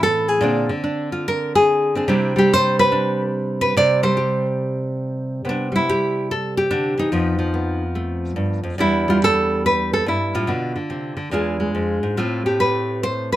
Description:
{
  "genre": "solo jazz",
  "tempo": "143 BPM",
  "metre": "4/4",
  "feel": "swing 66% on 8ths, rubato",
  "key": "C major",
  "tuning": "A4 = 440 Hz",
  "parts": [
    { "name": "nylon-string guitar", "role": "solo", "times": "0.0-13.4 s", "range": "E2 to D5", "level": "-18 LUFS", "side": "equal", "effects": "none" }
  ],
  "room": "light reverb",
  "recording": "none",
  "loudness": "-18 LUFS",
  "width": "side -14 dB against mid",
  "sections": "0.0-5.5 A section; 5.5-13.4 B section",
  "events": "nylon-string guitar solo 0.0-5.5",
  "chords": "0.4 Bb9; 2.1 Cmaj7sus2; 5.5 Cmaj9; 7.1 F7#11; 8.8 Em7; 10.5 Bdim; 11.3 E7b9; 12.2 Am9"
}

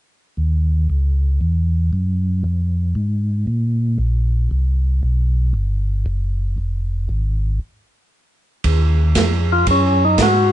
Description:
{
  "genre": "soul jazz organ trio",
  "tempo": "116 BPM",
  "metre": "4/4",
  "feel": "swing 67% on 8ths",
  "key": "Eb dorian",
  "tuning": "A4 = 440 Hz",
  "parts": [
    { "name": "mellow tonewheel organ", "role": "bass", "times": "0.4-10.5 s", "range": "F1 to Bb2", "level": "-17 LUFS", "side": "equal", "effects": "chorus vibrato, slow rotary speaker" },
    { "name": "open jazz drum kit", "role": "drums", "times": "8.6-10.3 s", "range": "hi-hat, kick drum, ride cymbal, snare drum", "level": "-19 LUFS", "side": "right 4 dB", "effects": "none" },
    { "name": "percussive tonewheel organ", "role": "melody", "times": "9.5-10.5 s", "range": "Db4 to Gb4", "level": "-15 LUFS", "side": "left 1 dB", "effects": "slow rotary speaker" }
  ],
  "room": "little or no reverb",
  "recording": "dark, warm production, nothing above 10.6 kHz",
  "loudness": "-16 LUFS",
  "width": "side -13 dB against mid",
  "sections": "0.4-8.6 A section; 8.6-10.5 B section",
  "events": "stop 7.6-8.6",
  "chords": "0.4 Dbsus2; 1.4 Esus2; 2.5 Fm; 3.5 N.C.; 4.5 C5; 6.6 Fm; 7.6 N.C.; 8.6 Ebm7"
}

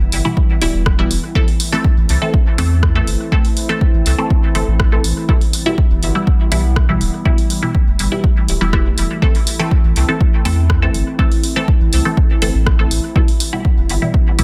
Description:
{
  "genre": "dub techno",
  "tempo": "122 BPM",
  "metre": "4/4",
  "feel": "straight",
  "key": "A minor",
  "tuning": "A4 = 440 Hz",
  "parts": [
    { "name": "warbly tape-like pad", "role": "sustained chords", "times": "0.0-14.4 s", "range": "E3 to E4", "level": "-28 LUFS", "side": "equal", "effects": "chorus, built-in reverb, phaser, sidechain pumping" },
    { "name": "warm sub bass", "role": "bass", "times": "0.0-14.4 s", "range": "D1 to E2", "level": "-19 LUFS", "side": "equal", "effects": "sidechain pumping" },
    { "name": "deep house drum kit", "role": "drums", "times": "0.1-14.4 s", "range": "hi-hat, rim click", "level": "-26 LUFS", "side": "equal", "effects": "none" },
    { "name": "filtered dub chord stab", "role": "stabs", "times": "0.2-14.4 s", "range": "B2 to A4", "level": "-23 LUFS", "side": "equal", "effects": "phaser, cassette tape, sidechain pumping, dub echo" },
    { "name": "electronic kick drum", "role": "drums", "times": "0.4-14.2 s", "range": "none", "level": "-17 LUFS", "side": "equal", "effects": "none" }
  ],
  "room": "digital ambience",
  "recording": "dense, heavily limited modern master",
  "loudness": "-15 LUFS",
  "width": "mono",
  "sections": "0.0-14.4 A section",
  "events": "none",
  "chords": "0.0 Em; 1.4 Am; 5.3 Em; 9.2 Am; 13.2 Em"
}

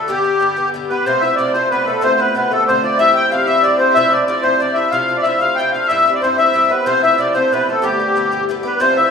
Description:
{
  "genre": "celtic folk, Celtic jig",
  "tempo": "124 BPM (dotted quarters)",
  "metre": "6/8",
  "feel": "straight",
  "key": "unclear",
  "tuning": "A4 = 440 Hz",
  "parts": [
    { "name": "accordion", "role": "melody", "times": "0.0-9.1 s", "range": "G4 to G5", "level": "-14 LUFS", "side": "left 2 dB", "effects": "light tremolo tuning" },
    { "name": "musette accordion", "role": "second line", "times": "0.0-9.1 s", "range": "G4 to G5", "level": "-24 LUFS", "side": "left 2 dB", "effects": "none" },
    { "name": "Irish bouzouki", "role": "accompaniment", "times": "0.0-9.1 s", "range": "G2 to G4", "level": "-23 LUFS", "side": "left 7 dB", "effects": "none" },
    { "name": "cimbalom", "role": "second line", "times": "0.9-9.1 s", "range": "G3 to G4", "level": "-21 LUFS", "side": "right 4 dB", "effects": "none" }
  ],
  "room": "wet plate reverb, RT60 2.4 s",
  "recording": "rough home demo mix",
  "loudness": "-13 LUFS",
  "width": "side -6 dB against mid",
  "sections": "0.0-1.0 A section; 1.0-8.8 B section",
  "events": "none",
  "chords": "0.1 G; 1.0 F; 2.0 Dm7; 3.0 C; 4.0 F; 5.9 C; 6.9 F; 7.8 G"
}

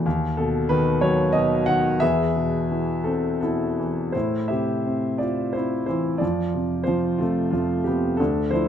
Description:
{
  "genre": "classical, lyrical solo piano",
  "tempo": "82-95 BPM",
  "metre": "3/4",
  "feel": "rubato",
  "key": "A minor",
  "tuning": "A4 = 440 Hz",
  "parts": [
    { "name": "warm grand piano", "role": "solo", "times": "0.0-8.7 s", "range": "D2 to F#5", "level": "-20 LUFS", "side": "equal", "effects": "none" }
  ],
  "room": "light reverb",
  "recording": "close, detailed microphones",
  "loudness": "-20 LUFS",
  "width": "side -9 dB against mid",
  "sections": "0.0-4.1 A section; 4.1-8.7 B section",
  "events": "none",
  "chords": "0.1 B/D#; 2.0 E; 4.1 Am; 6.2 F"
}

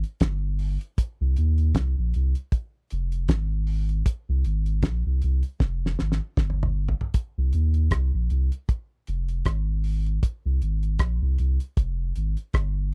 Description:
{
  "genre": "roots reggae",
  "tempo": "78 BPM",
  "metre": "4/4",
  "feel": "swing 56% on 16ths",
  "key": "unclear",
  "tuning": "A4 = 440 Hz",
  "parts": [
    { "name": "warm sub bass", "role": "bass", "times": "0.0-12.9 s", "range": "F1 to Eb2", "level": "-26 LUFS", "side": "equal", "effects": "none" },
    { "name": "cloth-damped thuddy drum kit", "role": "drums", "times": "0.0-12.7 s", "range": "hi-hat, kick drum, rim click, snare drum, toms", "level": "-25 LUFS", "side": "equal", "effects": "none" }
  ],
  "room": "little or no reverb",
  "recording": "dry, close 1970s-style studio recording",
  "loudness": "-25 LUFS",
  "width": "mono",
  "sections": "0.0-7.1 A section; 7.1-12.9 B section",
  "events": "drum fill 5.6-7.1",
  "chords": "none"
}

